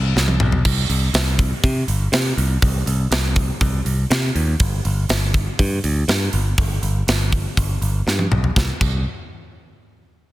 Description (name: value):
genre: heavy metal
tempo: 121 BPM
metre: 4/4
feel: straight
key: C harmonic minor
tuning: A4 = 440 Hz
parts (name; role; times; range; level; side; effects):
- modern bright picked electric bass; bass; 0.0-9.0 s; G1 to C3; -19 LUFS; equal; none
- tight metal drum kit; drums; 0.2-8.9 s; crash cymbal, hi-hat, kick drum, snare drum, toms; -20 LUFS; equal; none
room: little or no reverb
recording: dense, heavily limited modern master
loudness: -17 LUFS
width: side -16 dB against mid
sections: 0.6-8.6 A section; 8.6-10.3 B section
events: drum fill 0.2-0.6, 8.1-8.6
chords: none